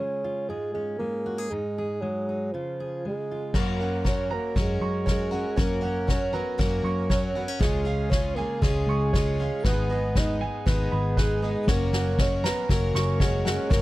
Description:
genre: indie folk with a building arrangement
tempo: 118 BPM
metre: 4/4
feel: straight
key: F# major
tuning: A4 = 439 Hz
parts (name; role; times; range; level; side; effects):
- dark bassoon; melody; 0.0-13.8 s; E#3 to D#4; -29 LUFS; right 2 dB; none
- fingerpicked steel-string acoustic guitar; accompaniment; 0.0-11.7 s; F#2 to A#4; -34 LUFS; left 2 dB; none
- picked plugged-in twelve-string acoustic guitar; accompaniment; 3.5-13.8 s; G#2 to A#4; -34 LUFS; left 5 dB; none
- warm upright piano; arpeggios; 3.5-13.8 s; B4 to C#6; -34 LUFS; right 7 dB; none
- picked electric bass; bass; 3.5-13.8 s; F#1 to F#2; -28 LUFS; equal; none
- soft-mallet drum kit; drums; 3.5-13.8 s; crash cymbal, kick drum, snare drum; -26 LUFS; equal; none
- felt-muted upright piano; accompaniment; 11.7-13.8 s; F#1 to D#5; -37 LUFS; left 7 dB; none
- warm brass ensemble; sustained chords; 11.7-13.8 s; F#3 to C#4; -38 LUFS; left 2 dB; none
room: little or no reverb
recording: dry, close 1970s-style studio recording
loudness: -23 LUFS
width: side -17 dB against mid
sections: 0.0-3.5 A section; 3.5-13.8 B section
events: build-up 3.5-13.8; drum fill 3.5-13.8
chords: 0.0 C#; 1.5 G#5; 2.5 C#; 3.5 F#; 7.6 C#; 9.7 G#m; 11.7 F#

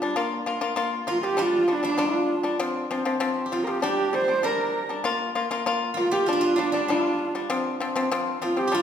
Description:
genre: mongolian traditional, Mongolian folk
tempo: 98 BPM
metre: 4/4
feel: straight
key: Bb gong mode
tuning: A4 = 440 Hz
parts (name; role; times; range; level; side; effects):
- steel-string zither; second line; 0.0-8.8 s; D4 to Bb4; -31 LUFS; right 2 dB; none
- pipa; arpeggios; 0.0-8.8 s; F3 to F4; -26 LUFS; left 4 dB; none
- dark horsehead fiddle; melody; 1.1-8.8 s; D4 to C5; -24 LUFS; right 2 dB; none
room: wet recital hall reverb, RT60 1.4 s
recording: recorded in a church or concert hall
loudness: -22 LUFS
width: side -8 dB against mid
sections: 0.0-8.8 A section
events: none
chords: 0.2 Bb5; 1.4 G5; 2.6 F5; 3.8 G5; 5.0 Bb5; 6.3 G5; 7.5 F5

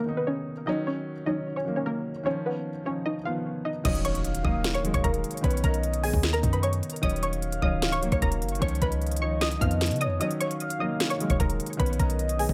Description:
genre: hip hop, trap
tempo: 151 BPM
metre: 4/4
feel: half-time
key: Eb minor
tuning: A4 = 440 Hz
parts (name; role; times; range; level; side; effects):
- warbly dusty pluck; melody; 0.0-12.5 s; Bb3 to F6; -33 LUFS; equal; chorus, tape echo
- dark baby grand piano; accompaniment; 0.0-12.5 s; D#3 to D#4; -34 LUFS; equal; tape echo
- trap drum kit; drums; 3.8-12.5 s; crash cymbal, hi-hat, kick drum, snare drum; -31 LUFS; equal; none
- warm 808-style bass; bass; 3.9-12.5 s; Db1 to Db3; -31 LUFS; equal; none
- impact; sound effects; 3.9-5.4 s; none; -39 LUFS; equal; none
- gliding portamento lead; second line; 4.0-12.5 s; Db5 to F5; -39 LUFS; equal; chorus, phaser, tape echo
room: light reverb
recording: echo-heavy mix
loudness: -27 LUFS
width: mono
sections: 0.0-3.9 A section; 3.9-12.5 B section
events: impact 3.9-5.4; break 10.2-11.0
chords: 0.0 Badd9; 0.7 Ebm7; 2.3 Dbadd9; 3.9 Ebm7; 5.4 Badd9; 7.0 Ebm7; 8.6 Dbadd9; 10.2 Ebm7; 11.8 Badd9

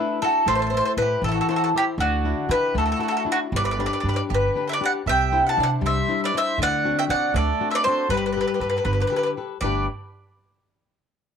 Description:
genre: italian folk, Italian serenade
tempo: 79 BPM (dotted quarters)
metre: 6/8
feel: straight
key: G major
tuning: A4 = 440 Hz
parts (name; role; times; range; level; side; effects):
- bowl-back mandolin; melody; 0.0-9.9 s; F#4 to A5; -22 LUFS; equal; none
- mandolin; second line; 0.0-9.9 s; D4 to F#5; -31 LUFS; right 13 dB; none
- flamenco guitar; accompaniment; 0.0-9.9 s; G2 to C5; -27 LUFS; left 8 dB; none
- upright bass; bass; 0.5-9.9 s; G1 to D3; -26 LUFS; right 2 dB; none
room: moderate spring reverb, RT60 1.2 s, small room ambience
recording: 1960s-style stereo with parts hard left and right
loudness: -20 LUFS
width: side -7 dB against mid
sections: 0.0-9.6 A section; 9.6-11.1 B section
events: none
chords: 0.5 Am; 2.0 Dadd9; 3.5 G; 5.1 Cadd9; 6.6 D7; 8.1 Gadd9

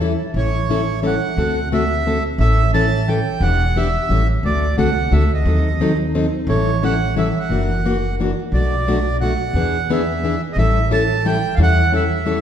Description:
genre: acoustic string swing (jazz manouche)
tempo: 176 BPM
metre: 3/4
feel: swing 62% on 8ths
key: A mixolydian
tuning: A4 = 439 Hz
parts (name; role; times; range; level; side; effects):
- picked plugged-in steel-string acoustic guitar; accompaniment; 0.0-12.4 s; B2 to A4; -20 LUFS; left 2 dB; none
- upright bass; bass; 0.0-12.4 s; E1 to E2; -19 LUFS; equal; none
- accordion; melody; 0.4-12.4 s; C#5 to A5; -22 LUFS; right 4 dB; none
room: wet scoring stage reverb, RT60 1.7 s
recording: recorded in a church or concert hall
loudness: -15 LUFS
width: side -9 dB against mid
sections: 0.3-12.4 A section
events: none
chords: 0.3 A7; 1.4 D7; 2.4 A7; 3.4 Em7; 4.1 A7; 4.4 D7; 5.5 D#dim7; 6.5 A7; 7.5 F#aug7; 8.5 Bm7; 9.5 E7; 10.6 A7

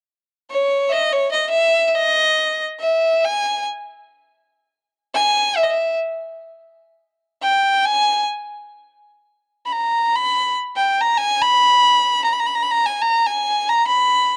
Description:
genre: balkan folk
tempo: free time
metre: none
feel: none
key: unclear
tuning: A4 = 440 Hz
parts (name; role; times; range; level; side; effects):
- clear fiddle; solo; 0.5-14.4 s; C#5 to B5; -18 LUFS; equal; cassette tape
room: light reverb, small room ambience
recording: home recording on cassette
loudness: -18 LUFS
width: mono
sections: 0.0-14.4 A section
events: fiddle solo 0.0-14.4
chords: none

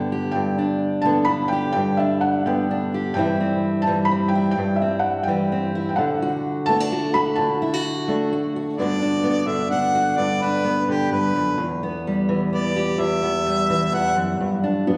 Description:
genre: acoustic folk duo or small band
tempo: 128 BPM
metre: 3/4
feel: straight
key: G major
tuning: A4 = 440 Hz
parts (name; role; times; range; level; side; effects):
- felt-muted upright piano; melody; 0.0-8.3 s; E5 to B5; -26 LUFS; equal; none
- fingerpicked steel-string acoustic guitar; accompaniment; 0.0-15.0 s; E2 to G4; -23 LUFS; equal; none
- warm harmonica; second line; 8.8-14.2 s; G4 to F#5; -26 LUFS; equal; none
- clear upright piano; arpeggios; 14.9-15.0 s; F#3; -23 LUFS; equal; none
room: wet scoring stage reverb, RT60 2.0 s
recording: recorded in a church or concert hall, small room ambience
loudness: -22 LUFS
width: mono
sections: 0.0-8.8 A section; 8.8-15.0 B section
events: harmonica solo 8.8-15.0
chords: 0.0 G; 3.2 C/G; 6.0 D; 8.8 Gmaj7; 11.6 Em; 14.4 Gmaj7

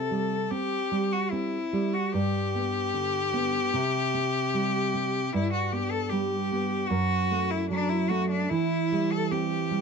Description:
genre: romantic duo for cello and classical guitar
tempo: 75 BPM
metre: 4/4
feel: rubato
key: unclear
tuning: A4 = 440 Hz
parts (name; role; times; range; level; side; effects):
- rich cello; melody; 0.0-9.8 s; D4 to A4; -28 LUFS; left 3 dB; none
- nylon-string guitar; accompaniment; 0.0-9.8 s; F#2 to C4; -28 LUFS; right 3 dB; none
room: light reverb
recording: close, detailed microphones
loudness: -25 LUFS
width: side -5 dB against mid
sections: 0.0-9.8 A section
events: none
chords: 0.0 C5; 2.1 G; 3.7 C5; 5.3 G; 6.9 F#m7; 8.5 C/E

